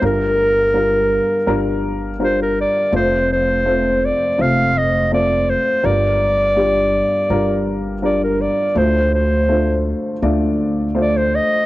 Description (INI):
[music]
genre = folk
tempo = 82 BPM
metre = 4/4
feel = straight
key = G minor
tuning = A4 = 440 Hz
[part]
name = warm clarinet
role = melody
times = 0.0-11.7 s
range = Bb4 to F5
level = -17 LUFS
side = equal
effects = cassette tape
[part]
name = dark upright piano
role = accompaniment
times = 0.0-11.7 s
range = F1 to D5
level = -19 LUFS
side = left 1 dB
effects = cassette tape
[part]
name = upright bass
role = bass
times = 0.0-11.4 s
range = F1 to D2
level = -23 LUFS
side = equal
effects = none
[sound]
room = small room ambience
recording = home recording on cassette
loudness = -14 LUFS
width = side -16 dB against mid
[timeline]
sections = 0.0-11.7 A section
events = none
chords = 0.0 Gm7; 2.9 F; 5.8 Gm7; 8.8 Dm7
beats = | 0.02 0.74 1.47 2.20 | 2.93 3.66 4.39 5.12 | 5.84 6.57 7.30 8.03 | 8.77 9.49 10.22 10.95